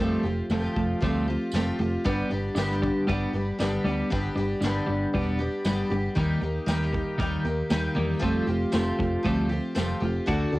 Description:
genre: folk rock and heartland rock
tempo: 117 BPM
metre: 4/4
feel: straight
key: unclear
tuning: A4 = 441 Hz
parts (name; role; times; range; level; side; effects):
- picked twelve-string acoustic guitar; accompaniment; 0.0-10.6 s; G2 to A4; -28 LUFS; left 1 dB; cassette tape
- twelve-string electric guitar; riff; 0.0-10.6 s; D3 to F#4; -28 LUFS; equal; cassette tape
- picked electric bass; bass; 0.0-10.6 s; E1 to E2; -30 LUFS; equal; none
- soft brush drum kit; drums; 0.5-10.4 s; hi-hat, kick drum, snare drum; -32 LUFS; equal; cassette tape
- tambourine; percussion; 0.5-9.9 s; none; -43 LUFS; right 3 dB; none
room: moderate booth ambience, RT60 0.2 s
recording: home recording on cassette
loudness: -24 LUFS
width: side -18 dB against mid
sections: 0.0-10.6 A section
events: none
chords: 0.0 Fadd9; 2.0 G; 6.2 Eb; 8.2 Fadd9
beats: 0.50 1.01 1.53 | 2.04 2.56 3.08 3.59 | 4.11 4.62 5.13 5.65 | 6.16 6.68 7.19 7.70 | 8.22 8.73 9.24 9.76 | 10.27

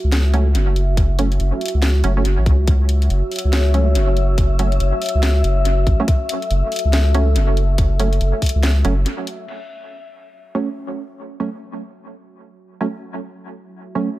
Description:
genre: deep dubstep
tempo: 141 BPM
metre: 4/4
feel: swing 62% on 16ths, half-time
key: F# minor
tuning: A4 = 441 Hz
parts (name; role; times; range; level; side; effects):
- dark analog pad; sustained chords; 0.0-14.2 s; F#4 to E5; -28 LUFS; right 2 dB; chorus
- saturated sub bass; bass; 0.0-9.1 s; F#1 to C#2; -16 LUFS; equal; none
- garage drum kit; drums; 0.1-9.6 s; crash cymbal, hi-hat, snare drum; -26 LUFS; left 1 dB; low-pass filter on hats, small room ambience, low-pass filter on cymbals, low-pass filter on snare, analog delay
- filtered dub chord stab; stabs; 0.3-14.1 s; F#3 to C#4; -25 LUFS; right 3 dB; wide subtle chorus, vintage 12-bit sampler grit, dub echo
- electronic kick drum; drums; 1.0-8.5 s; none; -17 LUFS; equal; small room ambience
- wind-like tuned noise texture; texture; 3.0-9.5 s; E5; -27 LUFS; left 4 dB; built-in reverb
room: digital ambience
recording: echo-heavy mix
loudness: -15 LUFS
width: side -16 dB against mid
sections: 0.0-9.5 A section; 9.5-14.2 B section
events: break 9.1-9.5; filter sweep on analog synth pad 9.5-14.2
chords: 0.0 F#m; 9.5 F#5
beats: 0.12 0.55 | 0.97 1.40 1.82 2.25 | 2.68 3.10 3.53 3.95 | 4.38 4.80 5.23 5.66 | 6.08 6.51 6.93 7.36 | 7.78 8.21 8.63 9.06 | 9.48 9.91 10.34 10.76 | 11.19 11.61 12.04 12.46 | 12.89 13.31 13.74 14.16

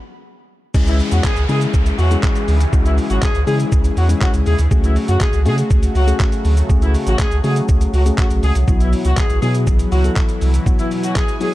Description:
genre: dance-pop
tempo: 121 BPM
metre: 4/4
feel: straight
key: C# minor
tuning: A4 = 439 Hz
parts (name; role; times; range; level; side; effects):
- mellow tine electric piano; accompaniment; 0.7-11.5 s; F#3 to A4; -23 LUFS; left 4 dB; sidechain pumping
- soft supersaw; sustained chords; 0.7-11.5 s; B2 to G#5; -27 LUFS; right 1 dB; phaser, sidechain pumping
- warm sub bass; bass; 0.7-10.6 s; G#1 to C#3; -15 LUFS; equal; sidechain pumping
- dusty soul sampler-style drum kit; drums; 0.7-11.5 s; crash cymbal, handclaps, hi-hat, kick drum, shaker; -18 LUFS; equal; none
- downlifter; sound effects; 0.7-4.7 s; none; -30 LUFS; equal; none
- warm horn section; melody; 0.9-11.5 s; E3 to G#4; -24 LUFS; left 2 dB; sidechain pumping, ping-pong delay
room: digital ambience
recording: dark, warm production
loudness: -14 LUFS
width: side -16 dB against mid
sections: 0.7-11.5 A section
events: stop 0.0-0.7; drop 0.7-11.5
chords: 0.0 N.C.; 0.7 C#m; 4.7 F#madd9/C#; 8.7 Bsus4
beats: 0.25 | 0.74 1.24 1.74 2.23 | 2.73 3.22 3.72 4.22 | 4.71 5.21 5.70 6.20 | 6.70 7.19 7.69 8.18 | 8.68 9.17 9.67 10.17 | 10.66 11.16

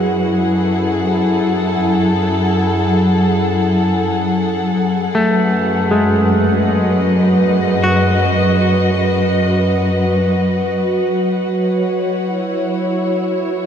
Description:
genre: ambient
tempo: free time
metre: none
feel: none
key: F# dorian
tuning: A4 = 441 Hz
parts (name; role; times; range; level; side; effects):
- dark studio string section; sustained chords; 0.0-13.7 s; F#3 to F#5; -15 LUFS; equal; none
- clear studio cello section; bass; 0.0-10.9 s; F#2; -19 LUFS; equal; none
- semi-hollow electric guitar; arpeggios; 5.1-9.5 s; G#3 to F#4; -20 LUFS; equal; tape echo
room: wet huge ambient reverb, RT60 8.2 s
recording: dark, warm production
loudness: -13 LUFS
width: side -8 dB against mid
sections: 0.0-11.0 A section; 11.0-13.7 B section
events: none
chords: 0.0 F#m7; 4.8 B/F#; 11.0 F#7(no3)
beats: free time

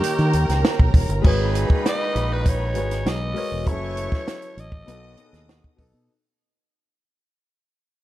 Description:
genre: lush 1970s-style soul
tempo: 99 BPM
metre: 4/4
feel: straight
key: G# minor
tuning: A4 = 436 Hz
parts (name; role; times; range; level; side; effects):
- raspy alto saxophone; melody; 0.0-5.8 s; G4 to D#5; -29 LUFS; equal; analog delay
- rich studio string section; second line; 0.0-5.8 s; A#4 to D#6; -30 LUFS; right 2 dB; none
- warm grand piano; accompaniment; 0.0-6.1 s; B2 to G5; -30 LUFS; left 4 dB; none
- warm horn section; stabs; 0.0-5.8 s; A#2 to G5; -34 LUFS; right 3 dB; none
- compact cocktail drum kit; drums; 0.0-5.9 s; crash cymbal, hi-hat, kick drum, snare drum; -20 LUFS; equal; none
- fingered electric bass; bass; 0.2-6.1 s; E1 to D#3; -23 LUFS; equal; none
room: small room ambience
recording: dark, warm production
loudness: -19 LUFS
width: side -15 dB against mid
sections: 0.0-1.2 A section; 1.2-6.1 B section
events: fade-out 1.2-6.1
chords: 0.0 D#7; 1.2 G#m11; 3.7 F#m7; 4.9 B7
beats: 0.03 0.64 | 1.24 1.85 2.46 3.06 | 3.67 4.28 4.88 5.49

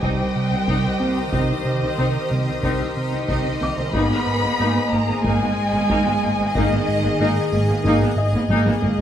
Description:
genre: cinematic, suspense film score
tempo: 92 BPM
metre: 4/4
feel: straight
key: unclear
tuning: A4 = 436 Hz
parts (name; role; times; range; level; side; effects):
- warm symphonic violin section; melody; 0.0-7.9 s; Eb5 to Cb6; -26 LUFS; left 3 dB; none
- dark studio violin section; second line; 0.0-9.0 s; G4 to Eb5; -28 LUFS; equal; none
- rich symphonic viola section; accompaniment; 0.0-8.9 s; Bb3 to Eb4; -25 LUFS; right 1 dB; none
- dark French horn section; sustained chords; 0.0-8.1 s; G3 to Eb4; -29 LUFS; left 6 dB; none
- shimmering ambient pad; sustained chords; 0.0-9.0 s; Ab4 to Eb5; -30 LUFS; left 1 dB; chorus, built-in reverb, phaser
- smooth synth bass; riff; 0.0-9.0 s; Ab2 to C4; -24 LUFS; right 1 dB; none
- rich symphonic cello section; bass; 0.0-7.8 s; Eb3 to Cb4; -25 LUFS; right 2 dB; none
- rich symphonic double bass section; bass; 0.0-9.0 s; Ab1 to C2; -30 LUFS; right 1 dB; none
- solo taiko drums; drums; 0.0-9.0 s; none; -28 LUFS; equal; none
- sub drop; sound effects; 0.0-1.3 s; none; barely audible; none; none
- felt-muted upright piano; texture; 0.0-9.0 s; Eb5 to D6; -33 LUFS; left 3 dB; none
- warm symphonic violin section; texture; 0.0-8.8 s; Ab5 to Bb6; -36 LUFS; left 1 dB; none
room: moderate scoring stage reverb, RT60 1.8 s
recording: close, detailed microphones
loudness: -18 LUFS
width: side -10 dB against mid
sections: 0.0-9.0 A section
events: impact 0.0-1.3; drum fill 8.5-9.0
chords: 0.0 Cm7; 3.9 Abmadd9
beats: 0.02 0.68 | 1.33 1.98 2.63 3.29 | 3.94 4.59 5.24 5.89 | 6.55 7.20 7.85 8.50

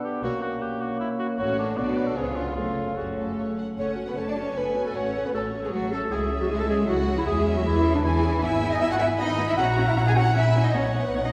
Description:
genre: quick classical-period movement for symphony orchestra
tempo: 155 BPM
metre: 3/4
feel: straight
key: F# minor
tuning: A4 = 440 Hz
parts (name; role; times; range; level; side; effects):
- dark clarinet; second line; 0.0-11.3 s; D4 to G#5; -30 LUFS; equal; none
- mellow cor anglais; second line; 0.0-3.4 s; D4 to B4; -35 LUFS; equal; none
- mellow bassoon; accompaniment; 0.0-3.6 s; C#3 to B3; -36 LUFS; equal; none
- mellow French horn section; sustained chords; 0.0-3.6 s; A3 to D4; -34 LUFS; equal; none
- rich chamber violin section; melody; 0.2-11.3 s; A4 to B5; -37 LUFS; equal; none
- rich chamber violin section; second line; 0.2-11.3 s; C#4 to G#5; -36 LUFS; equal; none
- rich chamber viola section; accompaniment; 0.2-11.2 s; G#3 to A4; -34 LUFS; equal; none
- rich chamber double bass section; bass; 0.2-11.3 s; F#1 to E2; -30 LUFS; equal; none
- rich symphonic cello section; bass; 0.2-11.3 s; F#2 to G#4; -33 LUFS; equal; none
room: wet concert hall reverb, RT60 2.2 s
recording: heard from further back in the room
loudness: -25 LUFS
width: mono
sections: 0.0-3.8 A section; 3.8-11.3 B section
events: none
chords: 0.2 F#/B; 1.4 F#m/A; 1.8 Bm; 2.2 C#7; 2.6 F#m; 5.0 F#m/A; 6.1 C#m; 7.3 C#m/E; 8.4 E/G#; 9.6 F#7/A#; 10.7 B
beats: | 0.24 0.62 1.01 | 1.40 1.78 2.17 | 2.57 2.98 3.38 | 3.79 4.18 4.57 | 4.96 5.34 5.73 | 6.12 6.50 6.88 | 7.27 7.66 8.04 | 8.42 8.81 9.19 | 9.58 9.97 10.36 | 10.75 11.14

